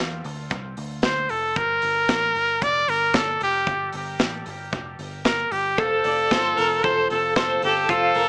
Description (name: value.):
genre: jangly indie pop.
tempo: 114 BPM.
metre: 4/4.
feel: straight.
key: unclear.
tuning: A4 = 440 Hz.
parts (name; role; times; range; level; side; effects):
vintage muted picked electric bass; bass; 0.0-8.3 s; E1 to E2; -39 LUFS; equal; none.
modern studio drum kit; drums; 0.2-8.3 s; hi-hat, kick drum, snare drum; -29 LUFS; equal; dub echo.
brilliant trumpet; melody; 1.0-8.3 s; G4 to D5; -24 LUFS; equal; dub echo.
fingerpicked twelve-string acoustic guitar; accompaniment; 5.8-8.3 s; F3 to A4; -30 LUFS; equal; dub echo.
twelve-string electric guitar; arpeggios; 5.8-8.3 s; F4 to D5; -26 LUFS; equal; tremolo.
room: light reverb, small room ambience.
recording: echo-heavy mix, small speaker sound.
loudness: -22 LUFS.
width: mono.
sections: 0.0-8.3 A section.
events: none.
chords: 0.0 Dm7; 1.6 Gm; 5.8 F.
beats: 0.52 1.04 | 1.57 2.10 2.62 3.15 | 3.67 4.20 4.73 5.25 | 5.78 6.31 6.83 7.36 | 7.89.